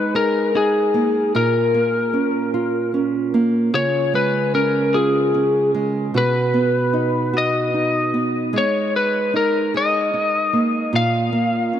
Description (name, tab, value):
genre	pop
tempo	50 BPM (dotted quarters)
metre	6/8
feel	straight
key	Db mixolydian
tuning	A4 = 439 Hz
part	lightly driven lead guitar	melody	0.0-11.8 s	Ab4 to F5	-19 LUFS	left 3 dB	none
part	nylon-string guitar	accompaniment	0.0-11.8 s	Bb2 to Ab4	-20 LUFS	right 2 dB	none
room	moderate huge ambient reverb, RT60 3.9 s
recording	dark, warm production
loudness	-16 LUFS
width	side -10 dB against mid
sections	0.0-11.8 A section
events	none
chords	0.0 Absus2; 1.3 Bbm; 3.7 Db; 6.1 Cb; 8.5 Absus2; 10.9 Bb5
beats	0.15 | 1.35 2.55 | 3.75 4.95 | 6.14 7.34 | 8.54 9.74 | 10.94